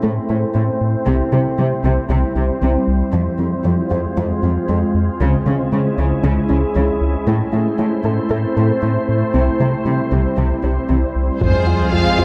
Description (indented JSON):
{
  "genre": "cinematic, hybrid orchestral and electronic film score",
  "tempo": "116 BPM",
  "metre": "4/4",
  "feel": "straight",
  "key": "F harmonic minor",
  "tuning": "A4 = 440 Hz",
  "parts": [
    { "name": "glassy FM pad", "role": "sustained chords", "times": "0.0-12.2 s", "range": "G3 to C5", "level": "-22 LUFS", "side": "equal", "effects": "ensemble chorus, built-in reverb, low-pass filter" },
    { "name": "analog pluck", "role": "arpeggios", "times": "0.0-12.2 s", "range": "C3 to A4", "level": "-29 LUFS", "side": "equal", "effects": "none" },
    { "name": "round analog bass", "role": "riff", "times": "0.0-12.2 s", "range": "C2 to A3", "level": "-22 LUFS", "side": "equal", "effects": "low-pass filter" },
    { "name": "rich symphonic cello section", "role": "bass", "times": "0.0-12.2 s", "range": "F2 to Db3", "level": "-24 LUFS", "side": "equal", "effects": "none" },
    { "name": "rich symphonic violin section", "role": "melody", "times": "11.4-12.2 s", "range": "C5 to F5", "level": "-22 LUFS", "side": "equal", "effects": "low-pass filter" },
    { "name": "warm symphonic violin section", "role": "second line", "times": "11.4-12.2 s", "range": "Ab4 to C5", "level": "-26 LUFS", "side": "equal", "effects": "none" },
    { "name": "rich symphonic viola section", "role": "accompaniment", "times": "11.4-12.2 s", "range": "Ab3 to F4", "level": "-25 LUFS", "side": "equal", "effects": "low-pass filter" },
    { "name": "taiko ensemble", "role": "drums", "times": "11.4-12.2 s", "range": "none", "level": "-27 LUFS", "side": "equal", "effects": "none" },
    { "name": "sub drop", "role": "sound effects", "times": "11.4-12.2 s", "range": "none", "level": "-24 LUFS", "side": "equal", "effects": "none" }
  ],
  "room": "moderate scoring stage reverb, RT60 1.9 s",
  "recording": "none",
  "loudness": "-17 LUFS",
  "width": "mono",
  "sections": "0.0-11.4 A section",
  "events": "build-up 0.0-11.4; filter sweep 0.0-11.4; impact 11.4-12.2",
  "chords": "0.0 Am; 1.1 C; 3.1 Fm; 5.2 Dbm; 7.3 Am; 9.3 C; 11.4 Fm"
}